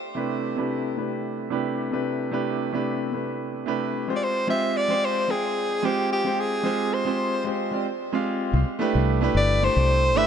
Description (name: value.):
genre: sunset chillout.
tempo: 111 BPM.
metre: 4/4.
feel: swing 54% on 16ths.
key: C major.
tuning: A4 = 440 Hz.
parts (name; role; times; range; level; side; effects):
clear concert grand piano; accompaniment; 0.1-10.3 s; C3 to G5; -25 LUFS; moving between left 4 dB and right 5 dB; auto-pan, low-pass filter, digital delay.
clear soprano saxophone; melody; 4.2-10.3 s; G4 to E5; -25 LUFS; equal; digital delay.
fingered electric bass; bass; 8.5-10.3 s; G1 to C2; -21 LUFS; left 1 dB; tube saturation.
room: light reverb.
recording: nothing above 10.9 kHz.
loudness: -22 LUFS.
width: side -8 dB against mid.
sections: 0.0-8.5 A section; 8.5-10.3 B section.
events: break 7.5-8.5.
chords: 0.0 Cmaj13; 4.2 Fmadd9; 8.5 Cmaj13.